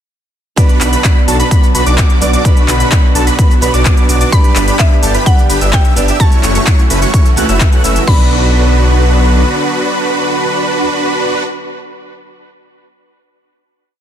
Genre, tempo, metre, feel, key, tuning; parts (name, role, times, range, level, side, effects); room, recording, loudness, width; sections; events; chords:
EDM, festival progressive house; 128 BPM; 4/4; straight; B minor; A4 = 440 Hz
picked steel-string acoustic guitar; accompaniment; 0.6-11.4 s; G2 to D5; -20 LUFS; right 6 dB; sidechain pumping, tape echo
supersaw pad; sustained chords; 0.6-11.4 s; D3 to G4; -22 LUFS; left 1 dB; sidechain pumping
plucky unison lead; arpeggios; 0.6-11.4 s; A5 to F#6; -21 LUFS; equal; sidechain pumping, tape echo
supersaw chords; riff; 0.6-11.4 s; A3 to F#5; -16 LUFS; right 1 dB; analog chorus, sidechain pumping, tape echo
big-room dance drum kit; drums; 0.6-8.2 s; crash cymbal, handclaps, hi-hat, shaker; -18 LUFS; left 1 dB
electronic kick drum; drums; 0.6-8.2 s; -10 LUFS; equal
wide detuned saw bass; bass; 0.8-9.4 s; F#1 to C#2; -13 LUFS; equal; chorus, sidechain pumping
mallet-like synth pluck; melody; 4.3-11.4 s; E5 to B5; -21 LUFS; left 1 dB; chorus, tape echo
light reverb, digital ambience; dense, heavily limited modern master; -8 LUFS; side -10 dB against mid
0.6-8.1 drop; 8.1-11.8 final chord
drop 0.6-8.1
0.6 Bm; 4.3 G; 6.2 F#m7; 8.1 Bm